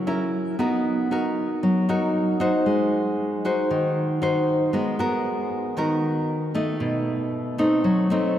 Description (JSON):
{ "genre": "bossa nova", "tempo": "116 BPM", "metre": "4/4", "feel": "straight", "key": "G# minor from 4.7 s", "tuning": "A4 = 440 Hz", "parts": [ { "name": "nylon-string guitar", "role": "solo", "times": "0.0-8.4 s", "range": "B2 to B#4", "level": "-21 LUFS", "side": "equal", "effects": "none" } ], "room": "wet cathedral reverb, RT60 4.9 s", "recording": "in a vast, echoing space", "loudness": "-21 LUFS", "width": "side -11 dB against mid", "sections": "0.0-4.7 A section; 4.7-8.4 B section", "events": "none", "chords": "0.0 F#7; 0.6 Bmaj7; 2.7 G#7; 4.7 G#m9; 6.8 B7b9" }